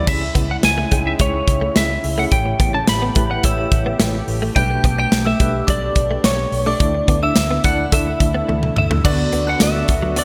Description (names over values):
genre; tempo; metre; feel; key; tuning
1980s-style pop; 107 BPM; 4/4; straight; unclear; A4 = 440 Hz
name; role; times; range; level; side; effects
lightly driven lead guitar; melody; 0.0-10.2 s; C#5 to B5; -24 LUFS; equal; digital delay
tine electric piano; accompaniment; 0.0-10.2 s; A2 to G5; -28 LUFS; equal; medium tremolo
phased analog pad; sustained chords; 0.0-10.2 s; B2 to G4; -32 LUFS; equal; phaser, chorus
direct-recorded clean electric guitar; riff; 0.0-10.2 s; F#3 to D4; -30 LUFS; equal; ensemble chorus, digital delay
vintage muted fingered electric bass; bass; 0.1-10.2 s; A1 to D2; -26 LUFS; equal; none
modern studio drum kit; drums; 0.1-10.2 s; crash cymbal, hi-hat, kick drum, snare drum, tambourine, toms; -21 LUFS; equal; gated reverb
synth chime; second line; 3.5-10.2 s; C#6 to G6; -31 LUFS; equal; ensemble chorus, digital delay
funky polysynth comp; stabs; 9.0-10.2 s; D3 to F#4; -29 LUFS; equal; none
room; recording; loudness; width
moderate lush hall reverb, RT60 2.1 s; bright 1980s-style digital production; -17 LUFS; mono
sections
0.1-9.0 A section; 9.0-10.2 B section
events
drum fill 8.5-9.0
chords
0.1 C#m; 2.3 A7; 4.6 Gadd9/B; 6.8 Dsus2; 9.0 D6